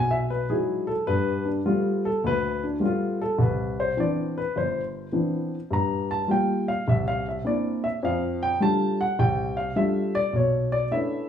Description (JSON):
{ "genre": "solo jazz", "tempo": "104 BPM", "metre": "4/4", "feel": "swing 68% on 8ths", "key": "C major from 3.4 s", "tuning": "A4 = 440 Hz", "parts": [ { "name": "dark baby grand piano", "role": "solo", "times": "0.0-11.3 s", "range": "G1 to Bb5", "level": "-23 LUFS", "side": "left 1 dB", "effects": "none" } ], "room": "wet large studio reverb, RT60 0.8 s", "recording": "band playing live in one room", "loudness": "-23 LUFS", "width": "side -8 dB against mid", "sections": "0.0-3.4 A section; 3.4-11.3 A section", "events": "grand piano solo 0.0-11.3", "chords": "0.0 Emaj9; 1.1 G9; 3.4 Cmaj9; 5.7 Gm7; 6.9 C9; 8.0 F69; 10.3 Bm11", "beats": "0.49 | 1.07 1.65 2.23 2.81 | 3.39 3.97 4.55 5.12 | 5.70 6.28 6.86 7.44 | 8.02 8.60 9.17 9.75 | 10.33 10.91" }